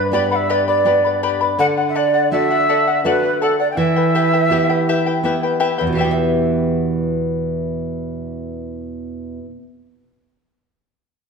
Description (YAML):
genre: andean folk, Andean ensemble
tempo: 82 BPM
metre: 3/4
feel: straight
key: E minor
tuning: A4 = 438 Hz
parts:
  - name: large quena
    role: melody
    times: 0.0-5.2 s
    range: A4 to G5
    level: -18 LUFS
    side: right 2 dB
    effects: tape echo
  - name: charango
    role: accompaniment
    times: 0.0-9.6 s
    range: E4 to B5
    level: -20 LUFS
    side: left 6 dB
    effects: none
  - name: nylon-string guitar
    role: accompaniment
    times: 0.0-9.7 s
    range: E2 to E5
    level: -20 LUFS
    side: right 2 dB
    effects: none
room: wet recital hall reverb, RT60 1.4 s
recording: none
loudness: -15 LUFS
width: side -5 dB against mid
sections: 0.0-6.0 A section; 6.0-8.1 B section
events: none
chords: 0.0 G; 1.6 D; 3.8 Em